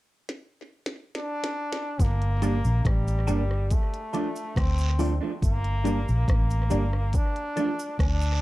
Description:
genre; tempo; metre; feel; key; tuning
roots reggae; 70 BPM; 4/4; straight; G minor; A4 = 440 Hz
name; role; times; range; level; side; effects
glitchy drum kit; drums; 0.3-8.4 s; hi-hat, kick drum, rim click, snare drum; -27 LUFS; equal; none
brilliant trombone; melody; 1.2-8.4 s; G3 to D4; -33 LUFS; equal; dub echo
vintage muted fingered electric bass; bass; 2.0-8.4 s; G1 to D2; -24 LUFS; equal; none
cabasa and guiro; percussion; 2.0-8.4 s; none; -41 LUFS; right 4 dB; none
electric guitar through a small old amp; accompaniment; 2.4-7.7 s; F3 to D4; -31 LUFS; right 4 dB; dub echo
filtered dub chord stab; stabs; 2.4-7.8 s; D4 to D5; -31 LUFS; left 3 dB; phaser
room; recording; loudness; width
light reverb; dark, warm production; -23 LUFS; side -18 dB against mid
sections
0.0-2.0 A section; 2.0-8.4 B section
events
drum fill 0.3-2.0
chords
0.0 N.C.; 2.0 Gm; 3.7 Dm; 5.4 Gm; 7.1 Dm

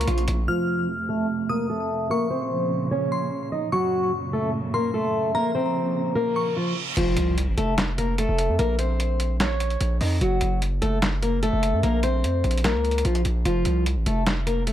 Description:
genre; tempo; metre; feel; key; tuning
hip hop, trap; 148 BPM; 4/4; half-time; Bb harmonic minor; A4 = 440 Hz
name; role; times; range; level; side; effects
fingerpicked plugged-in swing-style acoustic guitar; melody; 0.0-14.7 s; F3 to Eb5; -25 LUFS; left 1 dB; low-pass filter
glassy synth bell; second line; 0.0-6.6 s; Bb5 to F6; -30 LUFS; left 1 dB; chorus, ping-pong delay
muted studio string section; sustained chords; 0.0-7.0 s; F2 to F4; -29 LUFS; right 3 dB; low-pass filter
hard-hitting 808-style bass; bass; 0.0-0.5, 7.0-14.7 s; F1 to Gb2; -24 LUFS; equal; none
dusty soul sampler-style drum kit; drums; 0.0-0.4, 7.0-14.7 s; crash cymbal, handclaps, hi-hat, snare drum; -28 LUFS; equal; none
reverse cymbal and impact; sound effects; 6.3-8.6 s; none; -34 LUFS; right 1 dB; none
room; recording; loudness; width
little or no reverb; none; -21 LUFS; side -11 dB against mid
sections
0.5-7.0 A section; 7.0-14.7 B section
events
filter sweep 0.5-7.0; reverse cymbal 6.3-7.0; impact 7.0-8.6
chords
0.5 F; 2.1 Bbm; 3.7 Gb; 5.3 Bbm; 7.0 F; 8.6 Bbm; 10.2 N.C.; 11.8 Bbm; 13.5 F

